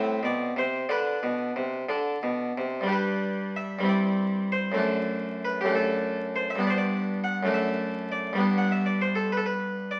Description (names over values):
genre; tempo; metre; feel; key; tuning
classical, baroque-style suite movement for harpsichord; 59-69 BPM (dotted quarters); 6/8; rubato; G major; A4 = 437 Hz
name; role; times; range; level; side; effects
harpsichord; solo; 0.0-10.0 s; F#2 to F#5; -27 LUFS; equal; none
room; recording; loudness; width
wet stone room reverb, RT60 1.0 s; very old 78 rpm record, vinyl crackle; -27 LUFS; mono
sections
0.0-2.9 A section; 2.9-10.0 A section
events
none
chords
0.0 Am; 0.9 Bm; 2.9 G; 3.9 C/G; 4.8 D7/F#; 6.6 G; 7.5 D/F#; 8.4 G